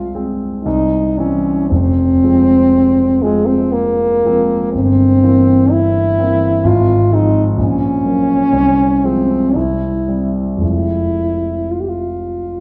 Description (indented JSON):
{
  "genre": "classical, romantic duo for French horn and grand piano",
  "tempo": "54-65 BPM",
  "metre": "3/4",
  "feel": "rubato",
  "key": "F minor",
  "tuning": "A4 = 441 Hz",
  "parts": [
    { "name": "mellow French horn", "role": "melody", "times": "0.0-12.6 s", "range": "Ab3 to G4", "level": "-16 LUFS", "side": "equal", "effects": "none" },
    { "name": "dark concert grand piano", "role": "accompaniment", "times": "0.0-12.6 s", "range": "F1 to C4", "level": "-18 LUFS", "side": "equal", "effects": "none" }
  ],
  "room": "wet recital hall reverb, RT60 1.7 s",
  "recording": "none",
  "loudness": "-14 LUFS",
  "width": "mono",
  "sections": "0.0-12.6 A section",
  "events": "none",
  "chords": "0.0 Fm/C; 0.6 C; 1.7 Fm; 4.7 C7/G; 6.6 Fm/Ab; 7.6 Gb/Bb; 8.5 Fm/C; 9.5 C; 10.6 Fm"
}